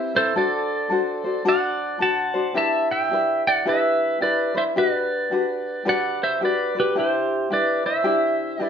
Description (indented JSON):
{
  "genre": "Hawaiian",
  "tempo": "109 BPM",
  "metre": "4/4",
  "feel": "swing 62% on 8ths",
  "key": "G major",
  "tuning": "A4 = 440 Hz",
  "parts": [
    { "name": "pedal steel guitar", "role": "melody", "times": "0.0-8.7 s", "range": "G4 to A5", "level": "-22 LUFS", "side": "right 1 dB", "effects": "none" },
    { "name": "tenor ukulele", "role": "accompaniment", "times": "0.0-8.7 s", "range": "C4 to C5", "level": "-23 LUFS", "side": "left 2 dB", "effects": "none" }
  ],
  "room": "wet studio reverb, RT60 0.7 s",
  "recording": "band playing live in one room",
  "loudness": "-19 LUFS",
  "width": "side -7 dB against mid",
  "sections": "0.0-8.7 A section",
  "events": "none",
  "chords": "0.3 D7; 2.5 Em7; 4.8 Gmaj7; 7.0 Cmaj9",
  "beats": "| 0.35 0.90 1.45 2.00 | 2.55 3.10 3.65 4.20 | 4.75 5.30 5.85 6.40 | 6.95 7.50 8.05 8.60"
}